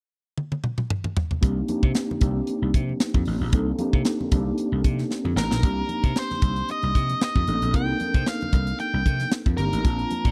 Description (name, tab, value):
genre	polished 1980s jazz-funk pop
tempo	114 BPM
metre	4/4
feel	swing 54% on 16ths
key	C dorian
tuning	A4 = 440 Hz
part	tight funk drum kit	drums	0.4-10.3 s	hi-hat, kick drum, snare drum, toms	-25 LUFS	equal	none
part	mellow tine electric piano	accompaniment	1.4-10.3 s	Bb3 to A5	-30 LUFS	equal	ensemble chorus
part	vintage slap bass	bass	1.4-10.3 s	G1 to C3	-28 LUFS	equal	none
part	congas	percussion	1.4-10.2 s	none	-40 LUFS	equal	none
part	octave-fuzz lead guitar	melody	5.4-10.3 s	Bb4 to G5	-30 LUFS	equal	distortion
room	small room ambience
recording	dry, close 1970s-style studio recording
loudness	-24 LUFS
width	mono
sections	0.0-1.4 A section; 1.4-5.6 B section; 5.6-10.3 C section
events	drum fill 0.4-1.4, 5.1-5.6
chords	0.0 N.C.; 1.4 Cm7